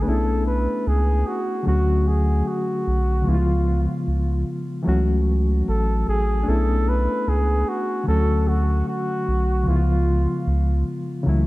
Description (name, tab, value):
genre	lo-fi hip hop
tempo	75 BPM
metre	4/4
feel	swing 62% on 16ths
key	unclear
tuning	A4 = 440 Hz
part	breathy flugelhorn	melody	0.0-10.5 s	E#4 to B4	-26 LUFS	equal	low-pass filter, analog delay
part	barky reed electric piano	accompaniment	0.0-11.5 s	C#3 to F#4	-24 LUFS	left 1 dB	overdrive, fast tremolo, cassette tape, low-pass filter
part	round analog bass	bass	0.0-11.5 s	A1 to D2	-20 LUFS	equal	none
room	moderate plate reverb, RT60 2.5 s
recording	dreamy mix soaked in reverb, cassette tape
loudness	-19 LUFS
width	side -18 dB against mid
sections	0.0-11.5 A section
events	none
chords	0.1 Bm11; 1.7 Dmaj7; 3.3 C#7; 4.9 F#m7/C#; 6.5 Bm11; 8.1 Dmaj7; 9.7 C#7